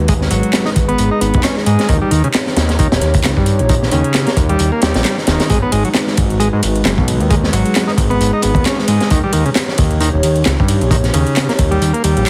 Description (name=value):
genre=breakbeat, breaks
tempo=133 BPM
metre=4/4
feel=swing 56% on 16ths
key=G# minor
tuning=A4 = 438 Hz
part: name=dark analog pad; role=sustained chords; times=0.0-12.3 s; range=G#3 to C#5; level=-23 LUFS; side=equal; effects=chorus, vintage 12-bit sampler grit, sidechain pumping
part: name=fat analog bass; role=bass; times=0.0-12.2 s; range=D#1 to G#2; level=-18 LUFS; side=equal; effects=none
part: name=combo organ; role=riff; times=0.1-12.3 s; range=C#3 to D#4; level=-21 LUFS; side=equal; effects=vintage 12-bit sampler grit, tape echo
part: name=crunchy breakbeat drum kit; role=drums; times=0.1-12.3 s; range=hi-hat, kick drum, snare drum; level=-19 LUFS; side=equal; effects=none
part: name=house drum kit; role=drums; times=0.1-12.3 s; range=handclaps, hi-hat, ride cymbal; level=-26 LUFS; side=equal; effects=none
room=light reverb, studio ambience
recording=heavily compressed radio sound, multiband compression, vinyl crackle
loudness=-14 LUFS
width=mono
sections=0.0-12.3 A section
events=none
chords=0.0 G#m7; 1.9 D#7; 5.5 G#m7; 9.1 D#7